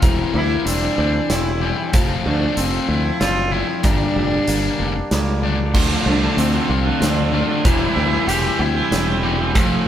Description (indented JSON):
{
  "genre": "post-rock",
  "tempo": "95 BPM",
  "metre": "3/4",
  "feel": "straight",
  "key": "unclear",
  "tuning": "A4 = 445 Hz",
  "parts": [
    { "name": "warm cello", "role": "melody", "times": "0.0-9.2 s", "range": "C4 to G4", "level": "-23 LUFS", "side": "right 1 dB", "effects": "none" },
    { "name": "pedal steel guitar", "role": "sustained chords", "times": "0.0-9.9 s", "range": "F3 to C6", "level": "-34 LUFS", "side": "equal", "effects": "none" },
    { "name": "twangy electric guitar", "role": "arpeggios", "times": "0.0-9.9 s", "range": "G2 to G4", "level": "-27 LUFS", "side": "left 3 dB", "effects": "none" },
    { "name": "sludgy distorted guitar", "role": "riff", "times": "0.0-9.9 s", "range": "G2 to F4", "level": "-24 LUFS", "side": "left 6 dB", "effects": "overdrive" },
    { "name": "modern bright fingered electric bass", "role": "bass", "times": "0.0-9.8 s", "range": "E1 to D2", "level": "-22 LUFS", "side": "equal", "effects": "none" },
    { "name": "huge arena drum kit", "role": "drums", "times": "0.0-9.7 s", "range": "crash cymbal, hi-hat, kick drum, snare drum", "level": "-22 LUFS", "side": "equal", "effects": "none" },
    { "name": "distorted electric guitar", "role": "riff", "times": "5.7-9.9 s", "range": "D3 to G4", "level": "-21 LUFS", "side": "right 3 dB", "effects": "distortion" }
  ],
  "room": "moderate studio reverb, RT60 0.7 s",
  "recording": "band playing live in one room",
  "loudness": "-16 LUFS",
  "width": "side -10 dB against mid",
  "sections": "0.0-9.9 A section",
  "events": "none",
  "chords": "0.0 C7/E; 1.9 F; 3.8 Gm; 5.7 Dm7; 7.6 C7/E",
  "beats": "| 0.03 0.67 1.30 | 1.94 2.58 3.21 | 3.85 4.48 5.11 | 5.75 6.38 7.01 | 7.65 8.28 8.91 | 9.55"
}